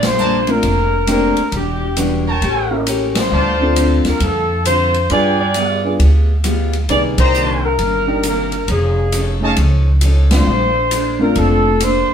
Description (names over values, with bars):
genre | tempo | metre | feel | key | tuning
jazz, big band swing | 134 BPM | 4/4 | swing 65% on 8ths | Bb major | A4 = 437 Hz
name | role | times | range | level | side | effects
dark saxophone section | melody | 0.0-12.1 s | G4 to D5 | -17 LUFS | left 1 dB | none
picked steel-string acoustic guitar | accompaniment | 0.0-12.1 s | C3 to C5 | -23 LUFS | equal | none
upright bass | bass | 0.0-12.1 s | E1 to G2 | -17 LUFS | equal | none
swinging big-band drum kit | drums | 0.0-11.9 s | hi-hat, kick drum, ride cymbal, snare drum | -22 LUFS | equal | none
clear trumpet section | stabs | 0.2-9.5 s | Bb4 to Bb5 | -21 LUFS | right 1 dB | none
warm concert grand piano | accompaniment | 0.5-11.8 s | G3 to D5 | -19 LUFS | equal | none
room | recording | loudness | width
wet studio ambience, RT60 0.5 s | band playing live in one room | -13 LUFS | side -8 dB against mid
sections
0.0-12.1 A section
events
band accent 0.0, 3.1, 7.1, 10.2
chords
0.0 Bbmaj9; 1.5 Em9; 2.4 A7b9; 3.3 Dm7; 5.1 G7b9; 6.9 Cm9; 8.7 F7alt; 10.5 Bbmaj9